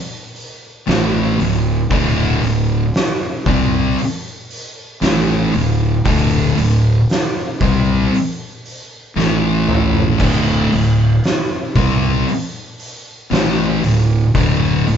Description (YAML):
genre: stoner and doom metal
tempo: 58 BPM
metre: 4/4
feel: straight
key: unclear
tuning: A4 = 440 Hz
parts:
  - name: oversized low-tuned drum kit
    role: drums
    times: 0.4-15.0 s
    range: crash cymbal, hi-hat, kick drum, snare drum, toms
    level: -20 LUFS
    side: equal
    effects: none
  - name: thick fuzz guitar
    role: riff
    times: 0.9-15.0 s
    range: D2 to C4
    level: -18 LUFS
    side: left 6 dB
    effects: distortion
  - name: thick fuzz guitar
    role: riff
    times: 0.9-15.0 s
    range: D2 to C4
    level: -18 LUFS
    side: right 6 dB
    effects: distortion
  - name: fuzz fingered electric bass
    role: bass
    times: 0.9-15.0 s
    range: D1 to C2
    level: -22 LUFS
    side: left 1 dB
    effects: overdrive
room: light reverb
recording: band playing live in one room, nothing above 7.7 kHz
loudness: -13 LUFS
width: side -8 dB against mid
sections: 0.0-15.0 A section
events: drum fill 9.2-10.2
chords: 0.0 D5; 9.2 A5; 10.2 D5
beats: 0.87 | 1.91 2.94 3.98 5.02 | 6.05 7.09 8.12 9.16 | 10.20 11.23 12.27 13.31 | 14.35